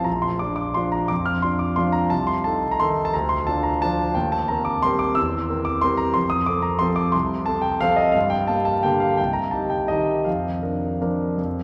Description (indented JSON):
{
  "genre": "classical, piano waltz",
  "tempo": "154-188 BPM",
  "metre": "3/4",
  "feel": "rubato",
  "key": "Bb major from 4.1 s",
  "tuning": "A4 = 440 Hz",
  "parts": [
    { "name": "warm concert grand piano", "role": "solo", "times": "0.0-11.6 s", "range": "Bb1 to F6", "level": "-22 LUFS", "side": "equal", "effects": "none" }
  ],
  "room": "wet church reverb, RT60 3.6 s",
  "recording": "recorded in a church or concert hall, vinyl crackle",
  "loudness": "-22 LUFS",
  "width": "mono",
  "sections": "0.0-11.6 A section",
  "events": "none",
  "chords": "0.1 Bb; 2.1 Adim/C; 3.1 Dm7; 4.1 Cm7/Eb; 5.2 C7/E; 6.2 F; 8.1 Gm; 9.2 Cm; 10.3 Bb/F"
}